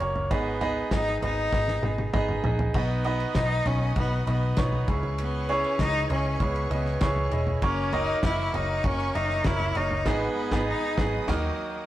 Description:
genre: piano-driven pop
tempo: 98 BPM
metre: 4/4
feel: straight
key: G# minor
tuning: A4 = 440 Hz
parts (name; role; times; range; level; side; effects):
- clear concert grand piano; accompaniment; 0.0-11.9 s; G#2 to E5; -29 LUFS; right 2 dB; none
- vintage muted picked electric bass; bass; 0.0-11.5 s; E1 to D#2; -29 LUFS; left 1 dB; none
- damped 70s drum kit; drums; 0.0-11.5 s; crash cymbal, kick drum, ride cymbal, snare drum, toms; -30 LUFS; equal; none
- rich cello; melody; 0.3-11.9 s; F#3 to E4; -30 LUFS; left 1 dB; none
- warm studio string section; sustained chords; 2.7-11.9 s; A#4 to D#6; -40 LUFS; equal; none
room: moderate stone room reverb, RT60 1.2 s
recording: rough rehearsal-room recording, warm saturation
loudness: -23 LUFS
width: side -14 dB against mid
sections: 0.0-11.9 A section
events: drum fill 1.5-2.7; band accent 10.1-11.9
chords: 0.3 G#m; 2.7 B; 4.9 C#m7; 7.6 F#; 10.1 G#m; 11.3 D#m

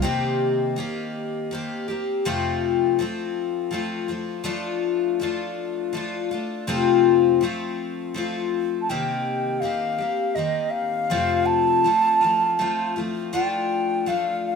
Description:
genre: folk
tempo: 81 BPM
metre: 3/4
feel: straight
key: C dorian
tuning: A4 = 440 Hz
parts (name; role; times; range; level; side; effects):
- picked twelve-string acoustic guitar; accompaniment; 0.0-14.6 s; F2 to G4; -23 LUFS; left 6 dB; none
- wooden flute; melody; 8.8-14.6 s; Eb5 to A5; -22 LUFS; right 2 dB; none
room: light reverb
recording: minimal, uncompressed stereo recording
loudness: -21 LUFS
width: side -5 dB against mid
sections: 0.0-8.9 A section; 8.9-14.6 B section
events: none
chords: 0.0 Cm7; 2.2 F; 4.5 Dm/F; 6.7 F; 8.9 Cm7; 11.1 F; 13.3 Dm/F

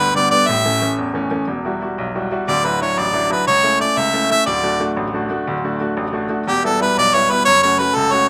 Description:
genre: celtic folk, Celtic slide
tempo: 120 BPM (dotted quarters)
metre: 12/8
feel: straight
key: unclear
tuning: A4 = 441 Hz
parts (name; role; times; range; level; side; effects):
- clear harmonica; melody; 0.0-8.3 s; G4 to E5; -17 LUFS; equal; none
- bright baby grand piano; accompaniment; 0.0-8.3 s; D1 to F#4; -22 LUFS; equal; none
room: moderate studio reverb, RT60 0.8 s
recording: none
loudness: -18 LUFS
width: mono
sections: 0.0-8.3 A section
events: none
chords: 0.5 A; 1.5 Emadd9; 2.5 Dadd9; 3.5 A/C#; 4.5 D; 6.5 Em; 7.5 F#m

